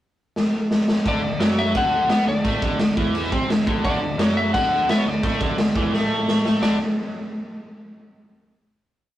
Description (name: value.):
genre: punk rock.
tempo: 172 BPM.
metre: 4/4.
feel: straight.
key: D major.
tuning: A4 = 444 Hz.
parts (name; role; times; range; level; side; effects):
raw garage drum kit; drums; 0.4-6.7 s; crash cymbal, kick drum, snare drum; -21 LUFS; equal; none.
lightly driven lead guitar; melody; 1.1-6.8 s; C#5 to F#5; -24 LUFS; left 2 dB; none.
distorted electric guitar; riff; 1.1-6.8 s; D3 to D4; -26 LUFS; right 1 dB; distortion.
growling picked electric bass; bass; 1.1-6.8 s; D2 to C3; -31 LUFS; equal; overdrive.
room: light reverb.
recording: rough rehearsal-room recording, warm saturation.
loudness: -18 LUFS.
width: side -13 dB against mid.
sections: 0.0-1.1 pickup bar; 1.1-6.6 riff; 6.6-8.0 final chord.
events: drum fill 0.4-1.1, 5.9-6.6.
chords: 0.0 N.C.; 1.1 D; 6.6 D5.